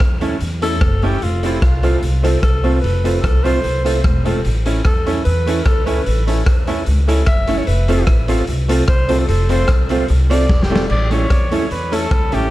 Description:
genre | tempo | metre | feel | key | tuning
ska | 149 BPM | 4/4 | swing 53% on 8ths | unclear | A4 = 440 Hz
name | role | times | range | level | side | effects
upright bass | bass | 0.0-12.5 s | E1 to E2 | -18 LUFS | equal | none
raw garage drum kit | drums | 0.0-12.4 s | crash cymbal, hi-hat, kick drum, rim click, snare drum | -18 LUFS | equal | none
archtop guitar, miked and amplified | accompaniment | 0.2-12.5 s | A3 to F4 | -23 LUFS | right 4 dB | tape echo
clear upright piano | stabs | 0.2-12.5 s | A3 to A4 | -25 LUFS | left 3 dB | tape echo
breathy alto saxophone | melody | 0.6-10.8 s | E4 to E5 | -24 LUFS | equal | tape echo
warm trumpet | melody | 10.9-12.5 s | G4 to D5 | -22 LUFS | equal | tape echo
room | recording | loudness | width
light reverb, studio reverb | dark, warm production | -14 LUFS | side -16 dB against mid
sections
0.0-10.9 A section; 10.9-12.5 A section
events
alto saxophone solo 0.0-10.9; drum fill 10.5-10.9; trumpet solo 10.9-12.5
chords
0.0 A; 1.2 F; 4.4 A; 7.7 F; 10.9 A

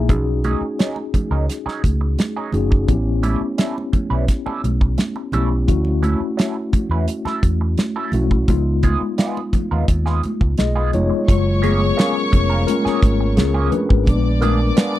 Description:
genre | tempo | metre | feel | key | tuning
lush 1970s-style soul | 86 BPM | 4/4 | straight | F# major | A4 = 440 Hz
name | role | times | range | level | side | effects
mellow tine electric piano | accompaniment | 0.0-15.0 s | F#3 to A#5 | -22 LUFS | left 4 dB | medium stereo tremolo
fingered electric bass | bass | 0.0-14.7 s | E#1 to E2 | -19 LUFS | equal | none
damped 70s drum kit | drums | 0.1-14.9 s | hi-hat, kick drum, snare drum | -17 LUFS | equal | none
congas | percussion | 0.1-15.0 s | none | -28 LUFS | right 4 dB | none
electric guitar through a small old amp | riff | 0.4-14.9 s | E#3 to B4 | -27 LUFS | right 6 dB | wah
warm studio violin section | second line | 11.3-15.0 s | C#5 to D6 | -26 LUFS | left 3 dB | none
room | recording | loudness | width
little or no reverb | dry, close 1970s-style studio recording | -16 LUFS | side -14 dB against mid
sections
0.0-11.3 A section; 11.3-15.0 B section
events
tine electric piano solo 11.3-15.0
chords
0.1 B69; 2.9 A7; 5.7 Dmaj9; 8.5 C#7; 11.3 F#maj9; 14.1 A#7b9

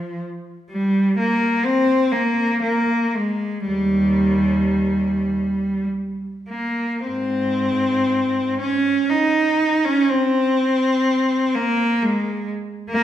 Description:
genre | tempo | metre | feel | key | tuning
classical, free, expressive piece for unaccompanied cello | 47-68 BPM | 3/4 | rubato | Ab major | A4 = 440 Hz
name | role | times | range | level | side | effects
clear cello | solo | 0.0-13.0 s | Eb2 to Eb4 | -18 LUFS | equal | none
room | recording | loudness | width
wet recital hall reverb, RT60 1.6 s | recorded in a church or concert hall | -17 LUFS | side -11 dB against mid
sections
0.0-13.0 A section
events
none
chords
none

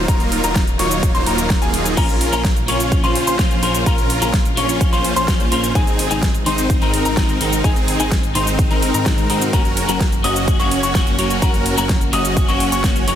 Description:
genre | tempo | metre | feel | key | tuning
EDM, festival progressive house | 127 BPM | 4/4 | straight | Bb minor | A4 = 440 Hz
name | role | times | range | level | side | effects
rich chamber string section | sustained chords | 0.0-13.2 s | C3 to Gb4 | -28 LUFS | equal | sidechain pumping
bright baby grand piano | arpeggios | 0.0-13.2 s | Ab5 to Eb6 | -24 LUFS | left 3 dB | sidechain pumping, digital delay
supersaw chords | riff | 0.0-13.2 s | Gb3 to Eb5 | -21 LUFS | right 1 dB | sidechain pumping, digital delay
wide detuned saw bass | bass | 0.0-13.2 s | Eb1 to Ab2 | -24 LUFS | equal | chorus, sidechain pumping
big-room dance drum kit | drums | 0.1-13.2 s | crash cymbal, hi-hat, shaker, snare drum | -24 LUFS | equal | overdrive
electronic kick drum | drums | 0.1-12.9 s | none | -18 LUFS | equal | overdrive
electric guitar at the edge of break-up | accompaniment | 2.0-13.2 s | Eb3 to Bb4 | -23 LUFS | left 3 dB | ensemble chorus, sidechain pumping, digital delay
room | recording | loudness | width
light reverb, digital ambience | dense, heavily limited modern master | -14 LUFS | side -10 dB against mid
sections
0.0-13.2 A section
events
none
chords
0.0 Ebmadd9; 2.0 Bbm; 5.8 Ab; 9.5 Gb

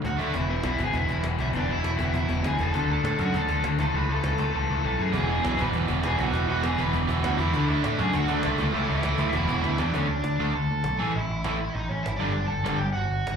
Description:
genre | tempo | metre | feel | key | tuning
punk rock | 200 BPM | 4/4 | straight | E mixolydian | A4 = 440 Hz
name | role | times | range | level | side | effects
distorted electric guitar | riff | 0.0-12.8 s | E2 to D4 | -30 LUFS | left 9 dB | distortion, slapback echo
overdriven semi-hollow guitar | riff | 0.0-0.3, 5.1-12.8 s | E2 to D4 | -29 LUFS | right 13 dB | slapback echo
growling picked electric bass | bass | 0.0-13.4 s | E1 to A2 | -27 LUFS | equal | overdrive
cajon | drums | 0.0-13.3 s | none | -34 LUFS | equal | none
high-gain lead guitar | melody | 0.1-13.4 s | A3 to B5 | -30 LUFS | right 1 dB | distortion, slapback echo
room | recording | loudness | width
little or no reverb | live gig heard through the venue's PA, club reverb | -23 LUFS | side -7 dB against mid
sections
0.3-9.9 A section; 9.9-13.4 B section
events
drum fill 0.0-0.3, 9.6-9.9; kick and snare drop out 4.5-5.1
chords
0.3 E; 2.7 D; 3.8 A/C#; 5.1 E; 7.5 D; 8.6 A/C#; 9.3 E5; 9.9 D5; 11.0 A; 12.2 G5

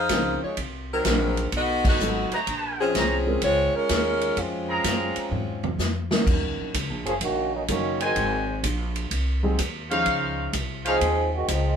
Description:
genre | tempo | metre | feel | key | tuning
jazz, big band swing | 126 BPM | 4/4 | swing 68% on 8ths | Bb minor, Eb minor from 6.3 s | A4 = 440 Hz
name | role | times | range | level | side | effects
warm saxophone section | melody | 0.0-5.8 s | F3 to F5 | -24 LUFS | left 1 dB | none
upright bass | bass | 0.0-11.8 s | Gb1 to Ab2 | -29 LUFS | equal | none
warm grand piano | accompaniment | 0.1-10.5 s | F3 to C5 | -29 LUFS | right 1 dB | none
swinging big-band drum kit | drums | 0.1-11.6 s | crash cymbal, hi-hat, kick drum, ride cymbal, snare drum, toms | -28 LUFS | equal | none
warm trumpet section | stabs | 2.3-11.0 s | Eb4 to Bb5 | -26 LUFS | equal | none
muted trombone section | second line | 7.1-11.8 s | Eb3 to Ab4 | -25 LUFS | right 2 dB | none
room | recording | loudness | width
moderate studio reverb, RT60 0.6 s | band playing live in one room | -22 LUFS | side -7 dB against mid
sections
0.0-6.3 A section; 6.3-11.8 B section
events
band accent 1.8; drum fill 5.3-6.3; trombone section solo 6.3-11.8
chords
0.0 Dbmaj13; 0.6 Cm7b5; 1.5 B7#11; 2.5 Bbm9; 6.3 Ebm7; 8.2 Ab7; 10.1 Dbmaj9

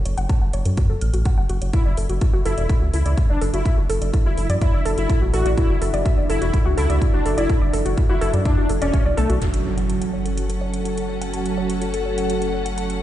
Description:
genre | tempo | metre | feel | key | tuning
melodic techno | 125 BPM | 4/4 | straight | F# minor | A4 = 442 Hz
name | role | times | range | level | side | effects
round analog bass | bass | 0.0-13.0 s | E1 to F#2 | -23 LUFS | equal | sidechain pumping
warbly dusty pluck | arpeggios | 0.1-13.0 s | E4 to E#6 | -27 LUFS | left 1 dB | chorus, sidechain pumping, ping-pong delay
electronic hi-hat | drums | 0.1-13.0 s | none | -37 LUFS | right 2 dB | sidechain pumping on hats
electronic kick drum | drums | 0.3-9.0 s | none | -19 LUFS | equal | none
wide unison lead | melody | 1.7-9.3 s | A3 to F#4 | -27 LUFS | left 2 dB | ensemble chorus, sidechain pumping, ping-pong delay
deep dark ambient pad | sustained chords | 2.8-13.0 s | D4 to A5 | -30 LUFS | right 1 dB | chorus, built-in reverb, sidechain pumping
brassy analog pad | stabs | 9.4-13.0 s | F#3 to F#4 | -26 LUFS | right 6 dB | chorus, sidechain pumping, ping-pong delay
impact | sound effects | 9.4-11.3 s | none | -27 LUFS | equal | none
warm studio string section | texture | 9.4-13.0 s | C#4 to F#5 | -28 LUFS | left 6 dB | sidechain pumping
room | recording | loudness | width
light reverb, digital ambience | played on a big sound system in a bare room, stone room reverb, nothing above 10.8 kHz | -18 LUFS | side -13 dB against mid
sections
0.0-9.4 A section; 9.4-13.0 B section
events
filter sweep on synth arpeggio sound 0.0-9.4, 9.4-13.0; impact 9.4-11.3; filter sweep on analog synth pad 9.4-13.0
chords
0.0 F#m; 1.7 Dadd9; 9.4 F#m

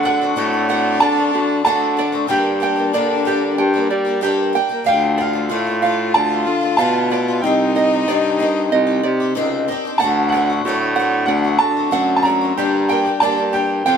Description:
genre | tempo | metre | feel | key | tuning
indie folk with a building arrangement | 93 BPM | 4/4 | straight | unclear | A4 = 440 Hz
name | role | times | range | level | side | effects
clear upright piano | melody | 0.0-14.0 s | F5 to Bb5 | -20 LUFS | right 2 dB | none
clear French horn | second line | 0.0-14.0 s | C4 to F4 | -24 LUFS | left 4 dB | none
picked twelve-string acoustic guitar | accompaniment | 0.0-14.0 s | F2 to G4 | -24 LUFS | left 4 dB | none
ukulele | arpeggios | 0.0-14.0 s | Eb4 to G5 | -22 LUFS | right 6 dB | none
mellow baritone saxophone | bass | 0.0-14.0 s | C2 to G3 | -20 LUFS | left 1 dB | none
room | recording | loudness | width
moderate studio reverb, RT60 0.8 s | band playing live in one room | -15 LUFS | side -7 dB against mid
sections
0.0-14.0 A section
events
none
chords
0.0 D7; 2.3 Gm; 4.9 Dm; 7.4 Cmadd9; 10.0 D7; 12.6 Gm

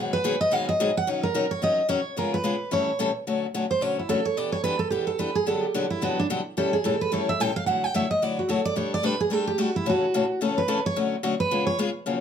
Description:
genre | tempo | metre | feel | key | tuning
jazz | 218 BPM | 4/4 | swing 57% on 8ths | D major from 3.3 s | A4 = 441 Hz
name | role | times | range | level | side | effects
picked steel-string acoustic guitar | accompaniment | 0.0-12.2 s | F#2 to A#4 | -26 LUFS | left 4 dB | none
picked steel-string acoustic guitar | melody | 0.1-11.8 s | D4 to G5 | -25 LUFS | right 3 dB | slapback echo
room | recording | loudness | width
moderate studio reverb, RT60 0.5 s | none | -22 LUFS | side -8 dB against mid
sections
0.0-3.3 A section; 3.3-12.1 B section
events
steel-string acoustic guitar solo 3.3-12.2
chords
0.0 G#m7; 1.1 D#m7; 2.2 C#7; 2.7 A7; 3.3 Dmaj7; 4.4 Em7; 5.5 Gmaj7; 6.6 A7; 7.7 Dadd9; 8.8 Gsus2; 9.9 A; 11.0 Dmaj7; 11.5 C#7

